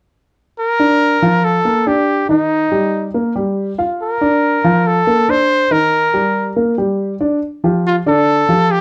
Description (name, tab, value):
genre	jazz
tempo	140 BPM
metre	4/4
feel	straight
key	Bb major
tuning	A4 = 440 Hz
part	clear trumpet	melody	0.6-8.8 s	Eb4 to C5	-17 LUFS	equal	none
part	dark baby grand piano	accompaniment	0.8-8.8 s	D3 to F5	-18 LUFS	equal	none
room	moderate studio reverb, RT60 0.7 s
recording	dark, warm production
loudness	-15 LUFS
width	mono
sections	0.6-7.4 A section; 7.4-8.8 B section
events	none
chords	0.6 Bb6; 2.3 Eb; 4.0 Bb; 5.7 Ebmaj7; 7.4 Dmadd11